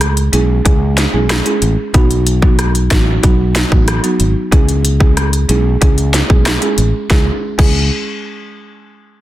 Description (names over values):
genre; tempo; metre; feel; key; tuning
dancehall; 93 BPM; 4/4; straight; C# minor; A4 = 440 Hz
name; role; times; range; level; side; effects
fretless electric bass; bass; 0.0-7.9 s; G#1 to C#2; -14 LUFS; equal; none
island pop drum kit; drums; 0.0-7.7 s; crash cymbal, hi-hat, kick drum, rim click, snare drum; -13 LUFS; equal; overdrive
buzzing marimba with soft mallets; accompaniment; 0.3-7.8 s; F#3 to G#4; -18 LUFS; right 2 dB; sidechain pumping
room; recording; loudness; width
digital ambience; dense, heavily limited modern master; -10 LUFS; side -14 dB against mid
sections
0.0-7.1 A section; 7.1-9.2 B section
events
none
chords
0.0 C#m; 1.9 B; 4.5 C#m